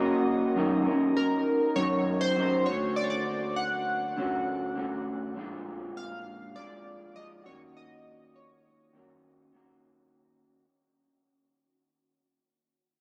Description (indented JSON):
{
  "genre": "indie pop",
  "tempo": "100 BPM",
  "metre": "4/4",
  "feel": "straight",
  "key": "unclear",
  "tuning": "A4 = 439 Hz",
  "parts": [
    { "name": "electric guitar through a small old amp", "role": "accompaniment", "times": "0.0-10.7 s", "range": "Bb2 to Bb4", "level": "-31 LUFS", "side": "equal", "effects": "subtle chorus, vibrato effect" },
    { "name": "chorused retro synth keys", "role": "melody", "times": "1.2-9.2 s", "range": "Bb4 to F#5", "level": "-34 LUFS", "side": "equal", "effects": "lush chorus, diffuse ambient delay" }
  ],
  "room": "wet huge ambient reverb, RT60 9.3 s",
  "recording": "dreamy mix soaked in reverb, cassette tape",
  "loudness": "-28 LUFS",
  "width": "mono",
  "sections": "0.0-10.1 A section",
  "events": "fade-out 0.0-10.1",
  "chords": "0.0 Ebm7 (rootless); 0.6 Gb6; 2.7 Dmaj7; 5.4 Bb7; 7.5 Ebm7"
}